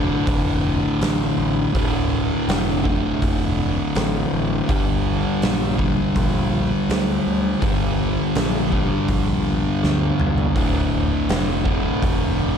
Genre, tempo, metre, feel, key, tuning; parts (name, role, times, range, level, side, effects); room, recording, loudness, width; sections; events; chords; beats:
stoner and doom metal; 82 BPM; 4/4; straight; D minor; A4 = 439 Hz
fuzz guitar; riff; 0.0-12.6 s; D2 to G3; -21 LUFS; equal; distortion
growling picked electric bass; bass; 0.0-12.6 s; D1 to D2; -25 LUFS; equal; overdrive
oversized low-tuned drum kit; drums; 0.3-12.2 s; hi-hat, kick drum, snare drum, toms; -24 LUFS; equal
studio reverb; dark, warm production; -18 LUFS; side -7 dB against mid
0.0-12.6 A section
drum fill 9.8-10.6
0.0 Dm; 4.7 Gm; 10.6 Dm
0.27 1.01 | 1.75 2.48 3.22 3.95 | 4.69 5.42 6.16 6.89 | 7.63 8.36 9.09 9.83 | 10.56 11.29 12.03